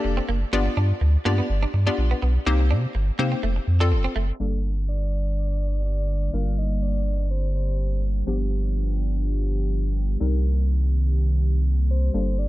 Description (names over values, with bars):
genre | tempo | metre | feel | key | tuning
pop | 124 BPM | 4/4 | straight | G minor | A4 = 440 Hz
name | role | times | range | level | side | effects
hollow square pluck | accompaniment | 0.0-12.5 s | F3 to D5 | -28 LUFS | left 3 dB | chorus
direct-recorded clean electric guitar | riff | 0.0-4.3 s | A3 to D4 | -32 LUFS | right 5 dB | lush chorus
warm sub bass | bass | 0.0-12.5 s | F1 to C3 | -22 LUFS | equal | none
warm analog pad | sustained chords | 4.4-12.5 s | D3 to G4 | -32 LUFS | right 1 dB | chorus
soft octave-layered synth lead | melody | 4.9-8.0, 11.9-12.5 s | C5 to F5 | -35 LUFS | left 2 dB | chorus, tape echo
room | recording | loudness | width
little or no reverb | dark, warm production, low-pass filter, nothing above 10.5 kHz | -21 LUFS | side -17 dB against mid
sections
0.0-4.4 A section; 4.4-12.5 B section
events
drop 0.0-4.4; filter sweep 4.4-12.5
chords
0.0 Gmadd9; 0.5 G7; 2.5 Cm7; 3.4 F; 4.4 Gmadd9; 8.3 G7; 10.2 Cm7